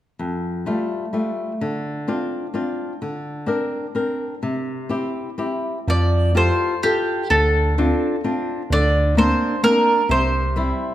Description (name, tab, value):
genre	italian folk, Italian serenade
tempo	127 BPM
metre	3/4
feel	straight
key	F major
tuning	A4 = 441 Hz
part	flamenco guitar	accompaniment	0.2-10.9 s	F2 to Bb4	-22 LUFS	left 1 dB	none
part	mandolin	melody	5.9-10.9 s	G4 to D5	-20 LUFS	right 1 dB	none
part	bell-like tine electric piano	bass	5.9-10.7 s	C2 to F2	-20 LUFS	right 1 dB	none
room	moderate recital hall reverb, RT60 1.5 s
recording	none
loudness	-18 LUFS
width	side -13 dB against mid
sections	0.2-5.9 A section; 5.9-10.9 B section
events	none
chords	0.2 Fadd9; 1.6 Dm7; 3.0 Bbadd9/D; 4.4 C; 5.9 Fadd9; 7.3 Dm7; 8.7 Bbadd9/D; 10.1 C